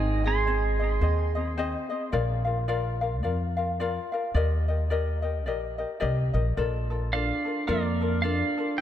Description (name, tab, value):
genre	Hawaiian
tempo	108 BPM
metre	4/4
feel	swing 59% on 8ths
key	Eb major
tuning	A4 = 440 Hz
part	pedal steel guitar	melody	0.0-1.3, 7.1-8.8 s	Bb4 to C6	-30 LUFS	right 3 dB	lush chorus, tape echo
part	vibraphone with medium mallets	second line	0.0-1.3, 7.1-8.8 s	Bb3 to Ab4	-31 LUFS	right 6 dB	none
part	ukulele	accompaniment	0.0-8.8 s	C4 to F5	-30 LUFS	left 4 dB	none
part	upright bass	bass	0.0-8.4 s	Ab1 to F2	-27 LUFS	equal	none
room	light reverb, small room ambience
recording	none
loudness	-25 LUFS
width	side -10 dB against mid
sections	0.0-6.6 A section; 6.6-8.8 B section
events	none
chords	0.0 Ab; 2.1 Bb; 4.4 Ebmaj7; 6.6 Bbmaj7